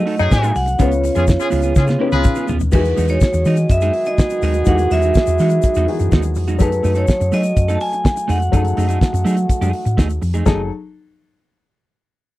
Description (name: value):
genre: disco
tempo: 124 BPM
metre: 4/4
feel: straight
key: F# dorian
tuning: A4 = 436 Hz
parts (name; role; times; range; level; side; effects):
- vibraphone with hard mallets; melody; 0.0-9.9 s; B4 to A5; -21 LUFS; equal; none
- electric guitar at the edge of break-up; accompaniment; 0.0-10.6 s; G#3 to A4; -24 LUFS; right 5 dB; none
- warm baby grand piano; accompaniment; 0.0-10.7 s; C#3 to B4; -25 LUFS; left 6 dB; none
- dark French horn section; sustained chords; 0.0-10.7 s; C#3 to G#4; -24 LUFS; right 4 dB; none
- damped 70s drum kit; drums; 0.1-10.6 s; crash cymbal, hi-hat, kick drum, snare drum, toms; -15 LUFS; equal; none
- clear horn section; stabs; 0.2-6.3 s; D#3 to B4; -25 LUFS; left 2 dB; none
- hollow-body short-scale fingered electric bass; bass; 0.2-10.7 s; F#1 to F#3; -18 LUFS; equal; none
- tube shaker; percussion; 0.2-10.7 s; none; -38 LUFS; left 20 dB; none
room: little or no reverb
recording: dry, close 1970s-style studio recording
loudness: -14 LUFS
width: side -16 dB against mid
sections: 0.0-2.7 A section; 2.7-10.5 B section; 10.5-12.4 C section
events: drum fill 1.8-2.7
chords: 0.0 F#m69; 0.8 C#7; 2.7 Emaj9; 6.6 F#m69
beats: 0.31 | 0.80 1.28 1.77 2.25 | 2.73 3.22 3.70 4.18 | 4.67 5.15 5.63 6.12 | 6.60 7.08 7.57 8.05 | 8.53 9.02 9.50 9.98 | 10.46